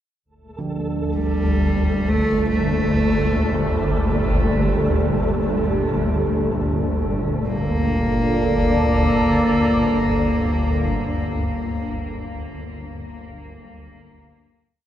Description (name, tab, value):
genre	dark ambient drone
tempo	66 BPM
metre	4/4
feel	straight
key	G harmonic minor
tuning	A4 = 440 Hz
part	sweeping resonant pad	sustained chords	0.2-11.9 s	Bb2 to D5	-25 LUFS	right 1 dB	chorus
part	swarming drone	drone	0.9-12.0 s	G1 to D2	-22 LUFS	equal	built-in reverb
part	flickering grainy texture	texture	0.5-7.5 s	A3 to A4	-28 LUFS	equal	built-in reverb
part	carillon bells	arpeggios	0.6-12.4 s	D3 to A4	-32 LUFS	right 2 dB	none
part	rich cello	melody	1.2-11.9 s	G3 to Bb3	-23 LUFS	equal	diffuse ambient delay
room	wet cathedral reverb, RT60 5.8 s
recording	in a vast, echoing space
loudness	-18 LUFS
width	side -11 dB against mid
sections	0.3-7.5 A section; 7.5-11.1 final chord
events	fade-in on analog synth pad 0.3-7.5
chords	0.3 Gmadd9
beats	| 0.25 1.16 2.06 2.97 | 3.87 4.76 5.66 6.57 | 7.49 8.39 9.29 10.20